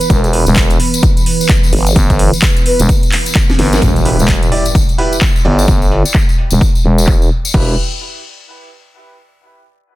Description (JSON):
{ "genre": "bass house", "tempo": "129 BPM", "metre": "4/4", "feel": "swing 60% on 16ths", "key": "E minor", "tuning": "A4 = 440 Hz", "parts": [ { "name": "breathy flute-like synth lead", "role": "melody", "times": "0.0-3.8 s", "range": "B4", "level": "-21 LUFS", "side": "equal", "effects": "lush chorus, dub echo" }, { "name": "sweeping resonant pad", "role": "sustained chords", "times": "0.0-3.8 s", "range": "E3 to B4", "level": "-20 LUFS", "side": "right 4 dB", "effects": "chorus, sidechain pumping" }, { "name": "house drum kit", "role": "drums", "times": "0.0-7.7 s", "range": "crash cymbal, handclaps, hi-hat, snare drum", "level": "-19 LUFS", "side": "equal", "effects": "overdrive, low-pass filter on hats, low-pass filter on snare, low-pass filter on cymbals, low-pass filter on room" }, { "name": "tambourine", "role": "percussion", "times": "0.0-7.5 s", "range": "none", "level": "-22 LUFS", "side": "left 4 dB", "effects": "none" }, { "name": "growling FM bass", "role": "bass", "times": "0.1-7.8 s", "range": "E1 to G1", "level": "-12 LUFS", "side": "equal", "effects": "overdrive, sidechain pumping" }, { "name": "electronic kick drum", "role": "drums", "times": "0.1-7.7 s", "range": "none", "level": "-12 LUFS", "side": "equal", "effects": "overdrive" }, { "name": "formant-sweep wobble bass", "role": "bass", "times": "1.7-1.9 s", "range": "G1", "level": "-12 LUFS", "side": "equal", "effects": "chorus, tube saturation, sidechain pumping" }, { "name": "impact", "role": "sound effects", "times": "3.8-5.7 s", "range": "none", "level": "-21 LUFS", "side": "equal", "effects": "none" }, { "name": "warm baby grand piano", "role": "stabs", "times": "4.1-7.7 s", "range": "E4 to D5", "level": "-21 LUFS", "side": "right 2 dB", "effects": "sidechain pumping, dub echo" } ], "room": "little or no reverb", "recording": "dense, heavily limited modern master", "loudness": "-9 LUFS", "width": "side -17 dB against mid", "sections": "0.0-3.8 A section; 3.8-7.5 B section; 7.5-9.4 C section", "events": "drop 0.0-3.8; drum fill 3.5-3.8; band accent 3.7; impact 3.8-5.7; filter sweep on drum 3.8-7.5", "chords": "0.0 Em" }